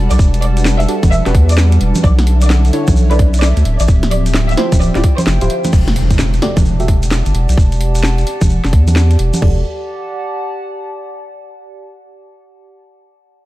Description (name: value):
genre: UK garage, two-step garage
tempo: 130 BPM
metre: 4/4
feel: swing 63% on 16ths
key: unclear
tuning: A4 = 440 Hz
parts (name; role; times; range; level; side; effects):
- airy breathy pad; sustained chords; 0.0-5.7 s; F3 to E5; -26 LUFS; right 1 dB; chorus, sidechain pumping
- saturated sub bass; bass; 0.0-9.6 s; D1 to E2; -12 LUFS; equal; none
- warbly tape-like pad; texture; 0.0-11.2 s; D3 to A5; -24 LUFS; equal; chorus, built-in reverb, sidechain pumping
- clear studio violin section; melody; 0.1-5.3 s; B4 to E5; -24 LUFS; equal; tape echo
- garage drum kit; drums; 0.1-9.4 s; congas, crash cymbal, hi-hat, snare drum; -19 LUFS; right 1 dB; overdrive, studio reverb
- shekere; percussion; 0.1-9.4 s; none; -30 LUFS; right 1 dB; none
- garage drum kit; drums; 0.2-9.6 s; crash cymbal, kick drum, toms; -12 LUFS; equal; overdrive, studio reverb
- deep mellow chord stab; stabs; 0.9-9.6 s; D4 to E5; -21 LUFS; right 1 dB; chorus, tape echo
- impact; sound effects; 5.7-7.6 s; none; -23 LUFS; equal; none
room: digital ambience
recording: dark, warm production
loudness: -10 LUFS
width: side -16 dB against mid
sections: 0.0-5.7 A section; 5.7-9.4 B section; 9.4-11.3 C section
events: drop 0.0-5.7; kick drops out 5.3-5.7; impact 5.7-7.6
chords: 0.0 Em11; 2.0 Bm11; 3.7 Dm11; 5.7 Em11; 9.4 Em11 (rootless)